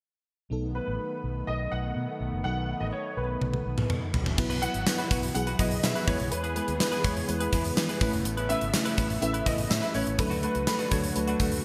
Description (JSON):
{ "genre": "1980s-style pop", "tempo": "124 BPM", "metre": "4/4", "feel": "straight", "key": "B mixolydian", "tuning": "A4 = 440 Hz", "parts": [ { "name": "FM electric piano with soft pad layer", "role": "accompaniment", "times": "0.5-11.6 s", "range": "F#3 to C#5", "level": "-35 LUFS", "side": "equal", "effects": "chorus, tremolo" }, { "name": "brassy analog pad", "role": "sustained chords", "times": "0.5-11.6 s", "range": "C#3 to G#4", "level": "-40 LUFS", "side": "equal", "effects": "chorus" }, { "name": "vintage muted fingered electric bass", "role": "bass", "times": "0.5-11.6 s", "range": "E1 to E3", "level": "-36 LUFS", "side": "equal", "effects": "none" }, { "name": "clear concert grand piano", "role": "melody", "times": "0.8-11.6 s", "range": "B4 to F#5", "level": "-35 LUFS", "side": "equal", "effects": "ensemble chorus" }, { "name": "gated 80s drum kit", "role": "drums", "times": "3.4-11.6 s", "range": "crash cymbal, hi-hat, kick drum, snare drum, toms", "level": "-31 LUFS", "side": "equal", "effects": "gated reverb" }, { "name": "direct-recorded clean electric guitar", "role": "riff", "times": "4.4-11.6 s", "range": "A3 to B4", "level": "-39 LUFS", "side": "equal", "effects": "subtle chorus" }, { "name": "tambourine", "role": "percussion", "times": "4.4-11.5 s", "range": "none", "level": "-46 LUFS", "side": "equal", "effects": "none" } ], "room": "moderate lush hall reverb, RT60 1.8 s, studio ambience", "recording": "bright 1980s-style digital production", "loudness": "-28 LUFS", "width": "mono", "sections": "0.5-4.4 A section; 4.4-11.6 B section", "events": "drum fill 3.4-4.4", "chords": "0.5 B7; 4.1 Bsus4; 6.1 E; 8.0 Aadd9; 10.2 D", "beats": "| 0.51 0.99 1.48 1.96 | 2.45 2.93 3.41 3.90 | 4.38 4.87 5.35 5.83 | 6.32 6.80 7.29 7.77 | 8.25 8.74 9.22 9.70 | 10.19 10.67 11.16 11.64" }